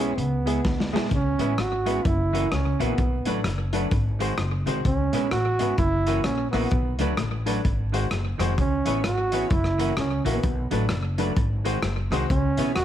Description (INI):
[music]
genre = ska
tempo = 129 BPM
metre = 4/4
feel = swing 60% on 8ths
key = unclear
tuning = A4 = 439 Hz
[part]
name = clear trombone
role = melody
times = 0.0-12.8 s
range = B3 to F#4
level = -26 LUFS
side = right 3 dB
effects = none
[part]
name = semi-hollow electric guitar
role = accompaniment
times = 0.0-12.7 s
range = D#3 to G#4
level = -31 LUFS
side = right 8 dB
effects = spring reverb
[part]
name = clear upright piano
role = stabs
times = 0.0-12.7 s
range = B3 to C#5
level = -32 LUFS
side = left 12 dB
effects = none
[part]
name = upright bass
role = bass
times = 0.0-12.8 s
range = E1 to D2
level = -27 LUFS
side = equal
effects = none
[part]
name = mellow electric guitar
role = riff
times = 0.2-12.8 s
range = E2 to D3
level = -34 LUFS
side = left 6 dB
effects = none
[part]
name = crunchy breakbeat drum kit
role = drums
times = 0.2-12.8 s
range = hi-hat, kick drum, rim click, snare drum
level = -28 LUFS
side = equal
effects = slapback echo
[sound]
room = light reverb, small room ambience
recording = 1960s-style stereo with parts hard left and right, vinyl crackle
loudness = -22 LUFS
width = side -11 dB against mid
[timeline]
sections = 0.0-1.1 A section; 1.1-12.8 B section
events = drum fill 0.6-1.1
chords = 0.0 E; 1.1 C#m7; 2.0 F#7; 3.0 Bm7; 3.9 G#7; 4.8 C#m7; 5.8 F#7; 6.7 Bm7; 7.6 G#7; 8.6 C#m7; 9.5 F#7; 10.4 Bm7; 11.4 G#7; 12.3 C#m7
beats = 0.17 0.64 | 1.11 1.58 2.05 2.51 | 2.98 3.45 3.92 4.38 | 4.85 5.32 5.78 6.25 | 6.72 7.18 7.65 8.11 | 8.58 9.04 9.51 9.97 | 10.44 10.90 11.37 11.83 | 12.30 12.76